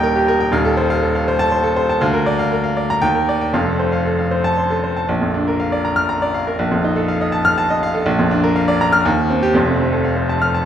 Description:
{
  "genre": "classical, virtuoso piano study",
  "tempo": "121 BPM",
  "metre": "3/4",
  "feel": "rubato",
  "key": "Bb major",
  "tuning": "A4 = 438 Hz",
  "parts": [
    { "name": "clear baby grand piano", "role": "solo", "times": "0.0-10.7 s", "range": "Eb1 to F6", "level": "-15 LUFS", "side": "equal", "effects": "none" }
  ],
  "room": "moderate recital hall reverb, RT60 1.9 s",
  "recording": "recorded in a church or concert hall",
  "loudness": "-15 LUFS",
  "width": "side -9 dB against mid",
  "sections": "0.0-5.1 A section; 5.1-10.7 B section",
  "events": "none",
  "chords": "0.0 Eb; 0.5 F7/Eb; 2.0 Bb/D; 3.0 Ebmaj7; 3.5 F; 5.1 Bb; 6.6 F7/Bb; 8.1 Bb; 9.1 Cm/Eb; 9.5 F",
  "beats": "0.04 | 0.53 1.02 1.52 | 2.01 2.52 3.03 | 3.54 4.06 4.57 | 5.09 5.59 6.09 | 6.59 7.09 7.58 | 8.07 8.56 9.05 | 9.55 10.05 10.55"
}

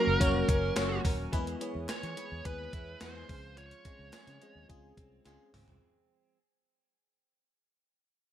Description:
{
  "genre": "1980s-style pop",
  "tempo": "107 BPM",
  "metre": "4/4",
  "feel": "straight",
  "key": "unclear",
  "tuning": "A4 = 440 Hz",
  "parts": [
    { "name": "bluesy overdriven lead guitar", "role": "melody", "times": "0.0-4.7 s", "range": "Bb4 to Db5", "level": "-36 LUFS", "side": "right 2 dB", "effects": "distortion, tape echo" },
    { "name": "FM electric piano with soft pad layer", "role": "accompaniment", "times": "0.0-5.8 s", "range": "Gb3 to Db5", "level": "-34 LUFS", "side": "left 2 dB", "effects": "chorus" },
    { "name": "direct-recorded clean electric guitar", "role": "riff", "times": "0.0-6.4 s", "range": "E3 to G#4", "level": "-42 LUFS", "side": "right 5 dB", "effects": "lush chorus" },
    { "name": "vintage muted fingered electric bass", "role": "bass", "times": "0.1-5.8 s", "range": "Eb1 to E3", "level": "-37 LUFS", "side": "equal", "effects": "none" },
    { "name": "gated 80s digital drum machine", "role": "drums", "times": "0.2-5.8 s", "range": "hi-hat, kick drum, snare drum, tambourine, toms", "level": "-34 LUFS", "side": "equal", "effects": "gated reverb, gated reverb snare" },
    { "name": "group handclap", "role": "percussion", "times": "0.8-5.4 s", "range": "none", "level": "-53 LUFS", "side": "left 3 dB", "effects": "none" }
  ],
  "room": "light reverb",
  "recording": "none",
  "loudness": "-29 LUFS",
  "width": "side -11 dB against mid",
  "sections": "0.0-5.8 A section",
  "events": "fade-out 0.0-5.8; drum fill 5.3-5.8",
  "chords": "0.0 Gb; 1.3 E; 3.3 Dbmaj7",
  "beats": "0.21 0.77 | 1.33 1.89 2.45 3.01 | 3.58 4.14 4.70 5.26"
}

